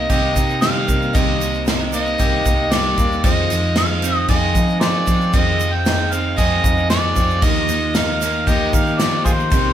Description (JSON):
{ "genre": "folk rock and heartland rock", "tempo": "115 BPM", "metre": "4/4", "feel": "straight", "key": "unclear", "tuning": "A4 = 440 Hz", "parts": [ { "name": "overdriven harmonica", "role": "melody", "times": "0.0-9.7 s", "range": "F4 to G5", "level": "-21 LUFS", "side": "equal", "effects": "none" }, { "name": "picked twelve-string acoustic guitar", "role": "accompaniment", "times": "0.0-9.7 s", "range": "F2 to G4", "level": "-26 LUFS", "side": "left 4 dB", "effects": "none" }, { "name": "warm concert grand piano", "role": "accompaniment", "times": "0.0-9.7 s", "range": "C4 to D6", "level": "-35 LUFS", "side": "right 4 dB", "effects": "none" }, { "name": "electric guitar through a small old amp", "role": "riff", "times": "0.0-9.7 s", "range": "C3 to Ab4", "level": "-24 LUFS", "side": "right 2 dB", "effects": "spring reverb" }, { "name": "hollow-body short-scale fingered electric bass", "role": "bass", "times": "0.0-9.7 s", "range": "C2 to F3", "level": "-22 LUFS", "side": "equal", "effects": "none" }, { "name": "natural country drum kit", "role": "drums", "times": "0.1-9.6 s", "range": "crash cymbal, kick drum, snare drum", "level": "-19 LUFS", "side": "equal", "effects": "none" }, { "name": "egg shaker", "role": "percussion", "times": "0.1-9.6 s", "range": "none", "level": "-33 LUFS", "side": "right 8 dB", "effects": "none" } ], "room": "moderate stone room reverb, RT60 1.0 s", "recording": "band playing live in one room", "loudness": "-15 LUFS", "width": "side -10 dB against mid", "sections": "0.0-9.7 A section", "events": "none", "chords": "0.0 Cm7; 3.2 Fm7; 7.4 Ebadd9" }